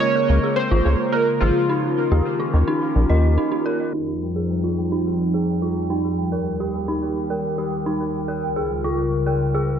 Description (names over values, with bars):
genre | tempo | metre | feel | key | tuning
IDM | 107 BPM | 4/4 | straight | F minor | A4 = 440 Hz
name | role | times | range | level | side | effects
warbly lo-fi synth keys | melody | 0.0-3.3 s | F4 to Db5 | -22 LUFS | equal | chorus, dub echo
warbly tape-like pad | sustained chords | 0.0-9.8 s | Db2 to Bb4 | -24 LUFS | equal | chorus, built-in reverb
pulsing gated texture | texture | 0.0-9.8 s | G3 to G5 | -30 LUFS | right 1 dB | chorus, built-in reverb
dark detuned synth bell | arpeggios | 0.2-9.6 s | Eb4 to Eb5 | -25 LUFS | right 2 dB | chorus, vintage 12-bit sampler grit, low-pass filter, analog delay
deep acid bass | bass | 0.3-3.4 s | Ab1 to Eb2 | -16 LUFS | equal | none
room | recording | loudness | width
moderate echo chamber reverb, RT60 1.9 s, digital ambience | echo-heavy mix, low-pass filter | -19 LUFS | side -8 dB against mid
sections
0.0-3.9 A section; 3.9-9.8 B section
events
break 3.4-3.9; filter sweep on synth bell 3.9-9.8; filter sweep 3.9-9.8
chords
0.0 Db6; 1.7 Eb9; 3.9 F7(no3); 6.2 Eb; 8.4 Db6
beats
0.01 0.57 1.13 | 1.70 2.25 2.82 3.38 | 3.94 4.50 5.06 5.62 | 6.18 6.74 7.30 7.86 | 8.42 8.98 9.54